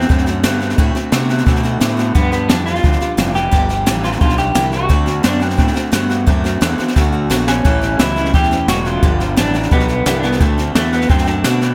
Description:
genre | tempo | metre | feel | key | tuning
rockabilly | 174 BPM | 4/4 | straight | D mixolydian | A4 = 441 Hz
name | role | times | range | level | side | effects
electric guitar through a small old amp | melody | 0.0-11.7 s | A3 to G4 | -22 LUFS | equal | tremolo, tape echo
picked steel-string acoustic guitar | accompaniment | 0.0-11.7 s | G2 to G4 | -26 LUFS | equal | none
electric guitar through a small old amp | riff | 0.0-11.7 s | G2 to B3 | -23 LUFS | equal | spring reverb
fuzz fingered electric bass | bass | 0.0-11.7 s | E1 to C3 | -22 LUFS | equal | overdrive
jazz brush drum kit | drums | 0.0-11.7 s | hi-hat, kick drum, snare drum | -19 LUFS | equal | none
room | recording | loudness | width
studio ambience | none | -15 LUFS | mono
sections
0.0-11.7 A section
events
drum fill 7.0-7.7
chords
0.0 D7; 2.2 G7; 4.9 D7; 7.7 A7; 9.0 G7; 10.4 D7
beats
0.10 0.44 | 0.78 1.12 1.47 1.81 | 2.15 2.50 2.84 3.18 | 3.53 3.87 4.21 4.56 | 4.90 5.24 5.59 5.93 | 6.28 6.62 6.96 7.31 | 7.65 8.00 8.34 8.69 | 9.03 9.38 9.72 10.06 | 10.41 10.75 11.10 11.44

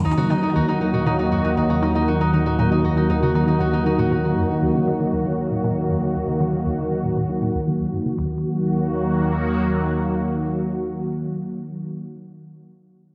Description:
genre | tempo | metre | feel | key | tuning
ambient, sequencer-driven space music | 118 BPM | 4/4 | straight | Eb minor | A4 = 441 Hz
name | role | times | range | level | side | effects
sweeping resonant pad | sustained chords | 0.0-12.0 s | Eb3 to Gb4 | -24 LUFS | equal | chorus
concert harp | arpeggios | 0.0-6.6 s | Eb4 to Gb4 | -28 LUFS | equal | delay
resonant blip pluck | riff | 0.0-8.4 s | Eb2 to Eb3 | -28 LUFS | equal | phaser, delay
analog drone | bass | 0.7-9.7 s | Eb2 | -30 LUFS | equal | chorus
room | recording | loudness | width
wet lush hall reverb, RT60 3.0 s | dreamy mix soaked in reverb | -21 LUFS | mono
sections
0.0-8.2 A section; 8.2-12.2 B section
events
fade-out on synth drone 0.0-8.2; filter sweep on synth arpeggio sound 0.0-8.2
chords
0.0 Ebm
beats
| 0.04 0.55 1.06 1.57 | 2.08 2.59 3.10 3.60 | 4.11 4.62 5.13 5.64 | 6.15 6.66 7.16 7.67 | 8.18 8.69 9.20 9.71 | 10.21 10.72 11.23 11.74

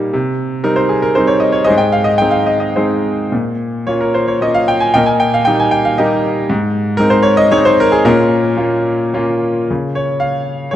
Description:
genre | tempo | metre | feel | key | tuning
classical, lyrical solo piano | 105-118 BPM | 3/4 | rubato | Bb dorian | A4 = 440 Hz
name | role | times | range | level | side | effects
bright concert grand piano | solo | 0.0-10.8 s | Ab2 to Ab5 | -12 LUFS | equal | none
room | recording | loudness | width
moderate concert hall reverb, RT60 1.7 s | dark, warm production | -12 LUFS | side -11 dB against mid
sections
0.0-9.7 A section; 9.7-10.8 B section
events
none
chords
0.1 Cm; 1.7 Ab; 3.3 Bbm; 5.0 Eb/Bb; 6.5 Ab; 8.1 Bbm; 9.7 Db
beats
| 0.14 0.65 1.17 | 1.69 2.21 2.76 | 3.33 3.88 4.43 | 4.96 5.47 5.99 | 6.50 7.00 7.53 | 8.05 8.59 9.14 | 9.70 10.23 10.74

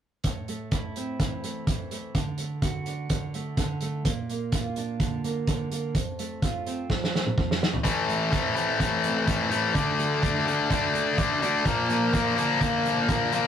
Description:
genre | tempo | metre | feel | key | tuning
quiet-loud alternative rock | 126 BPM | 4/4 | straight | A phrygian | A4 = 440 Hz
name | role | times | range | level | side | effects
fingerpicked steel-string acoustic guitar | arpeggios | 0.2-13.5 s | F2 to F#4 | -32 LUFS | right 3 dB | none
loose indie drum kit | drums | 0.2-13.4 s | hi-hat, kick drum, snare drum, toms | -27 LUFS | right 1 dB | none
high-gain distorted guitar | riff | 7.8-13.5 s | A2 to D4 | -23 LUFS | left 3 dB | distortion
room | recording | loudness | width
moderate booth ambience, RT60 0.2 s | rough rehearsal-room recording | -24 LUFS | side -9 dB against mid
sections
0.2-7.8 A section; 7.8-13.5 B section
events
drum fill 6.9-7.8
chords
0.2 Am; 2.1 D; 4.0 Bb; 5.9 F; 7.8 Am; 9.7 D; 11.7 Bb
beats
| 0.24 0.72 1.19 1.67 | 2.14 2.62 3.10 3.57 | 4.04 4.52 5.00 5.47 | 5.95 6.42 6.89 7.37 | 7.84 8.32 8.80 9.27 | 9.75 10.22 10.70 11.18 | 11.65 12.13 12.61 13.09

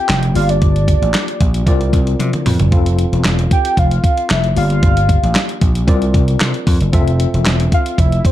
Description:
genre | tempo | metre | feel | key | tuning
early-eighties boogie funk | 114 BPM | 4/4 | straight | F major | A4 = 440 Hz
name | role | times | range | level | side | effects
warm velvety synth lead | melody | 0.0-8.3 s | C5 to G5 | -19 LUFS | right 1 dB | chorus, tremolo, slapback echo
tine electric piano | accompaniment | 0.0-8.3 s | Bb3 to F5 | -22 LUFS | left 4 dB | overdrive, fast stereo tremolo
vintage slap bass | bass | 0.1-8.2 s | E1 to C3 | -15 LUFS | equal | none
crisp 8-bit digital drum machine | drums | 0.1-8.3 s | handclaps, hi-hat, kick drum, snare drum, toms | -15 LUFS | equal | none
room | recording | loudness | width
little or no reverb | dark, warm production | -12 LUFS | side -13 dB against mid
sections
0.0-8.3 A section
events
drum fill 2.2-2.7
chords
0.4 Gm7; 1.7 C9sus4; 2.7 Fmaj7; 4.6 Gm7; 5.9 C9sus4; 6.9 Fmaj7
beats
0.09 | 0.62 1.14 1.67 2.20 | 2.72 3.25 3.77 4.30 | 4.83 5.35 5.88 6.41 | 6.93 7.46 7.99

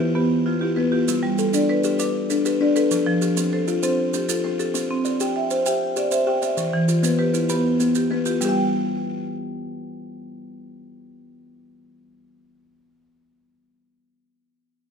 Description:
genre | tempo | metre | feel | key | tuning
southern african traditional, mbira-style interlocking cycle | 131 BPM (dotted quarters) | 12/8 | straight | unclear | A4 = 440 Hz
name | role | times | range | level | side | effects
buzzing kalimba | arpeggios | 0.0-13.1 s | E3 to G5 | -22 LUFS | left 4 dB | none
marimba with medium hard mallets | arpeggios | 0.0-13.1 s | E3 to G5 | -23 LUFS | right 3 dB | none
maracas | percussion | 1.1-8.6 s | none | -31 LUFS | right 9 dB | none
room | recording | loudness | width
moderate recital hall reverb, RT60 1.7 s | minimal, uncompressed stereo recording | -19 LUFS | side -6 dB against mid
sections
0.0-8.4 A section; 8.4-12.1 B section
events
none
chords
0.0 Em; 1.1 G; 2.9 F; 4.7 C; 6.6 Em; 8.4 N.C.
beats
0.15 0.61 | 1.07 1.53 1.99 2.45 | 2.91 3.37 3.83 4.29 | 4.75 5.20 5.66 6.12 | 6.58 7.03 7.49 7.95 | 8.41 8.86 9.32 9.78 | 10.24 10.69 11.15 11.61

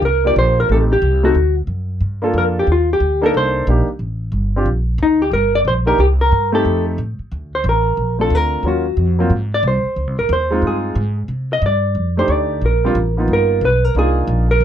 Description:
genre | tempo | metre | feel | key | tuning
jazz, small-group swing and bop | 181 BPM | 4/4 | swing 63% on 8ths | Bb major | A4 = 442 Hz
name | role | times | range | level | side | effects
hollow-body jazz guitar | melody | 0.0-14.6 s | Eb4 to Eb5 | -17 LUFS | left 1 dB | none
upright bass | bass | 0.0-14.6 s | F1 to C3 | -18 LUFS | equal | none
warm baby grand piano | accompaniment | 0.2-14.5 s | Gb3 to A4 | -20 LUFS | right 1 dB | none
room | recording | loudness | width
light reverb | dry, close 1970s-style studio recording | -14 LUFS | side -10 dB against mid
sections
0.0-7.3 A section; 7.3-14.6 B section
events
hollow-body jazz guitar solo 7.3-14.6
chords
0.0 Ebmaj9 (rootless); 0.7 Am7b5; 1.3 D; 2.0 Gm9; 3.3 Cm9; 4.0 F69; 4.7 Bb; 5.3 Gm; 6.0 Cm7; 6.7 F7; 7.3 Bbmaj7; 8.6 Ebm9; 9.3 Ab; 10.0 Dbmaj9 (rootless); 11.3 Csus2; 12.0 F13; 12.6 Bb69; 13.3 G7alt; 13.9 Cm11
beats
0.03 0.36 | 0.69 1.02 1.35 1.68 | 2.01 2.34 2.67 3.00 | 3.33 3.67 4.00 4.33 | 4.66 4.99 5.32 5.66 | 5.99 6.32 6.65 6.98 | 7.32 7.65 7.98 8.31 | 8.64 8.98 9.31 9.64 | 9.97 10.30 10.63 10.97 | 11.30 11.63 11.96 12.29 | 12.62 12.95 13.29 13.62 | 13.95 14.28 14.61

